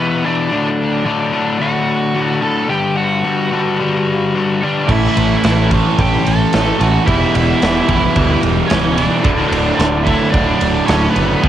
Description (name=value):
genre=quiet-loud alternative rock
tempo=110 BPM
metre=4/4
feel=straight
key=unclear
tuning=A4 = 441 Hz
part: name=high-gain lead guitar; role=melody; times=0.0-11.5 s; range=B3 to A5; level=-20 LUFS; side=right 2 dB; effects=distortion
part: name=tonewheel organ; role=sustained chords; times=0.0-11.5 s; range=D3 to B5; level=-27 LUFS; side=right 2 dB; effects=none
part: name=biting overdriven guitar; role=riff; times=0.0-11.5 s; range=D2 to A3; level=-18 LUFS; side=left 5 dB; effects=none
part: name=crunchy overdriven guitar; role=riff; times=4.9-11.5 s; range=D2 to A4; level=-20 LUFS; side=right 1 dB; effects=none
part: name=overdriven electric guitar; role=riff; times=4.9-11.5 s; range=D2 to A3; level=-20 LUFS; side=right 10 dB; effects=phaser
part: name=growling picked electric bass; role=bass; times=4.9-11.5 s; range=B0 to D2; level=-19 LUFS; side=right 1 dB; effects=overdrive
part: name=big rock drum kit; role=drums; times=4.9-11.5 s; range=crash cymbal, kick drum, ride cymbal, snare drum, toms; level=-18 LUFS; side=right 1 dB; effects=cassette tape
room=studio ambience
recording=home recording on cassette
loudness=-12 LUFS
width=side -11 dB against mid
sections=0.0-11.5 A section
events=none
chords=0.0 Em; 0.5 D; 2.7 G; 4.9 A; 7.1 Em; 9.3 D